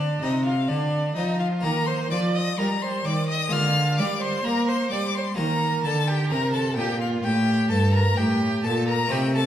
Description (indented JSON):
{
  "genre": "classical, baroque-style sonata movement with continuo",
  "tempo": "64 BPM",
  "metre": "4/4",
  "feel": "rubato",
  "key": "unclear",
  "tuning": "A4 = 444 Hz",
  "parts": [
    { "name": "warm violin", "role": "melody", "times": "0.0-9.5 s", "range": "D5 to F6", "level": "-28 LUFS", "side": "left 6 dB", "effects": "none" },
    { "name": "warm violin", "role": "second line", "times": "0.0-9.4 s", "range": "D4 to F5", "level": "-28 LUFS", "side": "right 4 dB", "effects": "none" },
    { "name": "harpsichord", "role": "accompaniment", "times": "0.0-9.5 s", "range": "G2 to F4", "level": "-30 LUFS", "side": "left 1 dB", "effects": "none" },
    { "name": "warm cello", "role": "bass", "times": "0.0-9.5 s", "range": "G2 to Bb3", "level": "-24 LUFS", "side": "equal", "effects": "none" }
  ],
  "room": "wet recital hall reverb, RT60 1.5 s",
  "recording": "none",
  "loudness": "-21 LUFS",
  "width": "side -11 dB against mid",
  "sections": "0.0-9.5 A section",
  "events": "none",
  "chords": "0.0 Bb; 1.6 Eb; 3.5 Bb7/D; 5.4 Eb"
}